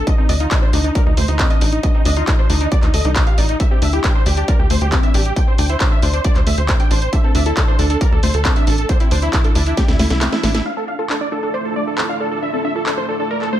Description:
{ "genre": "uplifting trance", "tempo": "136 BPM", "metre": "4/4", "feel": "straight", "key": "D minor", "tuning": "A4 = 440 Hz", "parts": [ { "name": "dense compressed supersaw", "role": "melody", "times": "0.0-13.6 s", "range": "Eb4 to G5", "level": "-22 LUFS", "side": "right 1 dB", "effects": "sidechain pumping, low-pass filter, dub echo" }, { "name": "tight sequencer bass", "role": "bass", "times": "0.0-10.6 s", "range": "A1 to D2", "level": "-18 LUFS", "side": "equal", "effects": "sidechain pumping" }, { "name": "analog pluck", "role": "arpeggios", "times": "0.1-13.6 s", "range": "A3 to D5", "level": "-25 LUFS", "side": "left 2 dB", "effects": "chorus, sidechain pumping, ping-pong delay" }, { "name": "electronic kick drum", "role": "drums", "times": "0.1-9.9 s", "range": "none", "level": "-16 LUFS", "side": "equal", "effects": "distortion" }, { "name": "techno drum kit", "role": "drums", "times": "0.1-13.5 s", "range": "handclaps, hi-hat, snare drum", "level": "-22 LUFS", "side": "equal", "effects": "none" }, { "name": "lush unison pad", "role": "sustained chords", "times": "10.7-13.6 s", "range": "A3 to D5", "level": "-26 LUFS", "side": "right 2 dB", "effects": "chorus, phaser, sidechain pumping" } ], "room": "digital ambience", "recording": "none", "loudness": "-14 LUFS", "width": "side -12 dB against mid", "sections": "0.0-10.7 A section; 10.7-13.6 B section", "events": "drum fill 9.8-10.7; kick drops out 10.2-10.7; filter sweep on supersaw synth 10.7-13.6; filter sweep on synth pluck 10.7-13.6", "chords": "0.1 N.C.; 3.6 C; 10.7 Dmadd9" }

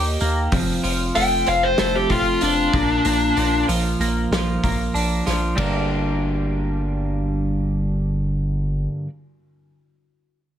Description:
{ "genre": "quiet-loud alternative rock", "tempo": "95 BPM", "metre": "4/4", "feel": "straight", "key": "G minor", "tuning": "A4 = 438 Hz", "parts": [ { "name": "twelve-string electric guitar", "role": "arpeggios", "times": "0.0-9.1 s", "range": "F2 to G4", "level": "-23 LUFS", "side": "right 2 dB", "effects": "analog chorus" }, { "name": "punchy sub bass", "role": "bass", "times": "0.0-8.9 s", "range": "F1 to Eb2", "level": "-25 LUFS", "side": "equal", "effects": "none" }, { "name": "loose indie drum kit", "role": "drums", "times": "0.2-5.7 s", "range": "hi-hat, kick drum, ride cymbal, snare drum", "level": "-26 LUFS", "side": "equal", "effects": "none" }, { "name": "dark smooth lead guitar", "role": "melody", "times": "1.2-3.6 s", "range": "D4 to G5", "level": "-18 LUFS", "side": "left 3 dB", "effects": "overdrive" } ], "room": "moderate studio ambience, RT60 0.5 s", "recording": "none", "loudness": "-18 LUFS", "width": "side -10 dB against mid", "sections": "0.0-5.6 A section; 5.6-8.1 B section", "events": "lead electric guitar solo 0.0-5.6", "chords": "0.0 Eb; 0.5 F; 2.7 Bb; 5.6 Gm" }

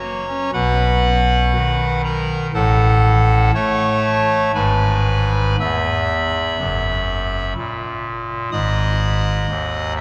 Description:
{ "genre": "classical, chorale-style piece for pipe organ", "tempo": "56-63 BPM", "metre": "4/4", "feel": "rubato", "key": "B major", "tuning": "A4 = 436 Hz", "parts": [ { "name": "pipe organ, clarinet reed", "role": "solo", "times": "0.0-10.0 s", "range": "F#1 to E6", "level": "-18 LUFS", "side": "equal", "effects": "none" } ], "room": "wet cathedral reverb, RT60 4.6 s", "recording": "dark, warm production", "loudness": "-18 LUFS", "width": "mono", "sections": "0.5-10.0 A section", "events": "none", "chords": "0.0 F# (rootless); 0.5 B; 2.5 A6; 4.5 E/G#; 6.6 F#; 8.5 G#m" }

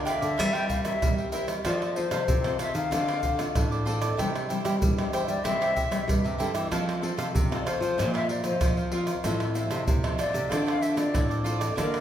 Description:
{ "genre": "samba and choro", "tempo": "95 BPM", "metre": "4/4", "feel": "straight", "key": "F major", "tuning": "A4 = 440 Hz", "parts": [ { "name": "cavaquinho", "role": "accompaniment", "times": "0.0-12.0 s", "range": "E4 to A5", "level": "-34 LUFS", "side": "right 3 dB", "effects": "none" }, { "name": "nylon-string guitar", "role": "accompaniment", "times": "0.0-12.0 s", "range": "G2 to Bb4", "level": "-33 LUFS", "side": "left 1 dB", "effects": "none" }, { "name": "nylon-string guitar", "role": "bass", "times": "0.0-12.0 s", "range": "A2 to C4", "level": "-30 LUFS", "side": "equal", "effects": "none" }, { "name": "wooden flute", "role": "melody", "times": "0.1-12.0 s", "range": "Bb4 to G5", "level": "-30 LUFS", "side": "left 3 dB", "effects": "none" }, { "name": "egg shaker, pandeiro, tamborim and surdo", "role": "percussion", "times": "0.1-12.0 s", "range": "none", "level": "-29 LUFS", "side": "right 1 dB", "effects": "none" }, { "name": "breathy trombone", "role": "second line", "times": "8.9-10.0 s", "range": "E4 to F4", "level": "-33 LUFS", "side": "left 4 dB", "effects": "none" } ], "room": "wet recital hall reverb, RT60 1.3 s", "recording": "recorded in a church or concert hall", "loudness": "-24 LUFS", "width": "side -10 dB against mid", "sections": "0.0-12.0 A section", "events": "none", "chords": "0.4 C7/G; 1.7 F; 2.9 Dm7; 4.2 C; 6.7 F; 8.0 Bbsus2; 9.3 Fmaj7/A; 10.5 Dm7" }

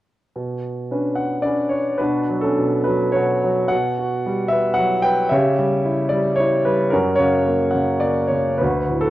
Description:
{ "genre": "classical, lyrical solo piano", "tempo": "101-115 BPM", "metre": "3/4", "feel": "rubato", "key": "B minor", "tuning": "A4 = 440 Hz", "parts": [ { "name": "clear concert grand piano", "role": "solo", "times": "0.4-9.1 s", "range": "D2 to G5", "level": "-17 LUFS", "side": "equal", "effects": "none" } ], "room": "moderate recital hall reverb, RT60 1.3 s", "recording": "worn, warbling old tape, cassette tape, warbly pitch drift", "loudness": "-17 LUFS", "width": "side -15 dB against mid", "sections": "0.3-2.0 A section; 2.0-9.1 B section", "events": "none", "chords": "0.3 Bmadd9; 3.7 Emadd9/B; 5.3 C#dim; 6.9 F#" }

